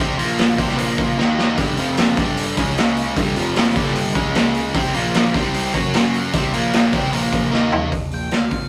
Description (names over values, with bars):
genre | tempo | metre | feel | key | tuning
blues rock power trio and southern rock | 151 BPM | 4/4 | straight | G minor | A4 = 439 Hz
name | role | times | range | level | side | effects
bright tonewheel organ | sustained chords | 0.0-7.9 s | none | barely audible | none | none
cranked stack guitar | riff | 0.0-7.9 s | F2 to F#4 | -23 LUFS | equal | overdrive
fuzz picked electric bass | bass | 0.0-8.7 s | F1 to F#2 | -29 LUFS | equal | overdrive
raw garage drum kit | drums | 0.2-8.6 s | hi-hat, kick drum, snare drum, toms | -21 LUFS | equal | none
octave-fuzz lead guitar | melody | 8.1-8.7 s | F5 to G5 | -32 LUFS | equal | distortion
room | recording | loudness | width
moderate studio reverb, RT60 0.6 s | rough rehearsal-room recording | -19 LUFS | mono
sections
0.0-7.9 A section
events
drum fill 1.2-1.6, 7.5-7.9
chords
0.2 Bb5; 0.6 C5; 0.8 Bb5; 1.2 Eb5; 1.6 Gm; 1.8 F5; 2.2 Gm; 2.6 C#5; 3.2 Gm; 3.4 F5; 3.8 Gm; 4.2 C#5; 4.7 C5; 4.9 Bb5; 5.3 C5; 5.7 F#5; 6.3 C5; 6.5 Bb5; 6.9 C5; 7.1 Bb5; 7.5 Eb5; 7.9 Gm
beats
0.38 0.78 1.17 | 1.57 1.97 2.37 2.76 | 3.16 3.56 3.96 4.35 | 4.75 5.14 5.54 5.94 | 6.33 6.73 7.12 7.52 | 7.92 8.31